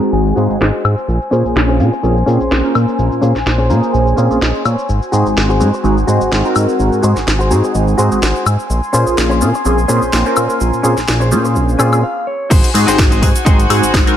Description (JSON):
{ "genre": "filtered disco house", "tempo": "126 BPM", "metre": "4/4", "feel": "swing 55% on 16ths", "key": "Bb minor", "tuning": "A4 = 440 Hz", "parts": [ { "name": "funky polysynth comp", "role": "accompaniment", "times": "0.0-14.2 s", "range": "Ab3 to C5", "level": "-16 LUFS", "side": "equal", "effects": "chorus, phaser, sidechain pumping, low-pass filter" }, { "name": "warm studio violin section", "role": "sustained chords", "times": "0.0-14.2 s", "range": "Gb4 to C6", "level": "-22 LUFS", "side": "left 1 dB", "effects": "sidechain pumping, low-pass filter" }, { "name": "direct-recorded clean electric guitar", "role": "riff", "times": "0.0-13.9 s", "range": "Db4 to Bb5", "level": "-20 LUFS", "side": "left 1 dB", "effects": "vintage 12-bit sampler grit, sidechain pumping, low-pass filter" }, { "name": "house drum kit", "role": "drums", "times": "0.0-14.2 s", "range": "crash cymbal, hi-hat, shaker, snare drum, woodblock", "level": "-20 LUFS", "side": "left 1 dB", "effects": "overdrive, sidechain pumping on hats, low-pass filter on hats, low-pass filter on snare, sidechain pumping on cymbals, low-pass filter on cymbals, sidechain pumping on perc, low-pass filter on perc" }, { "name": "fat analog bass", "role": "bass", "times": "0.1-14.0 s", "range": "Ab1 to Bb2", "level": "-15 LUFS", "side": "equal", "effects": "sidechain pumping, low-pass filter" }, { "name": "electronic kick drum", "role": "drums", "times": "12.5-14.0 s", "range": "none", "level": "-11 LUFS", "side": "equal", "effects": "overdrive" } ], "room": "light reverb, digital ambience", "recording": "none", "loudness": "-11 LUFS", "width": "side -10 dB against mid", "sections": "0.0-12.5 A section; 12.5-14.2 B section", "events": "clean electric guitar fill 0.0-1.1, 3.5-4.9, 11.6-12.5; filter sweep on drum 0.0-12.5; filter sweep 0.0-12.5; stop 12.0-12.5; drop 12.5-14.2", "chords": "0.0 Ab7; 1.1 Bbm9; 4.9 Ab7; 8.7 Bbm9; 12.5 Ab7" }